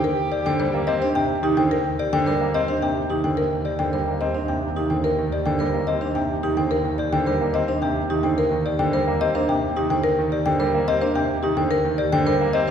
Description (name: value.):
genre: classical, minimalist pattern music.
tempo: 108 BPM.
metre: 3/4.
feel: straight.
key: Eb major.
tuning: A4 = 443 Hz.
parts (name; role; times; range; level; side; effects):
buzzing marimba with medium mallets; melody; 0.0-12.7 s; G4 to G5; -24 LUFS; left 3 dB; none.
mellow soprano saxophone; second line; 0.0-1.5 s; G4; -30 LUFS; right 4 dB; none.
warm concert grand piano; accompaniment; 0.0-12.7 s; C3 to C4; -25 LUFS; right 1 dB; none.
vibraphone with medium mallets; arpeggios; 0.0-12.7 s; D4 to C5; -26 LUFS; right 3 dB; none.
warm double bass; bass; 0.0-12.7 s; Eb2; -29 LUFS; right 2 dB; none.
room: wet concert hall reverb, RT60 2.2 s.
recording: recorded in a church or concert hall.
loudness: -19 LUFS.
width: side -8 dB against mid.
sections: 0.0-12.7 A section.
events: none.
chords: 0.0 Ebmaj7.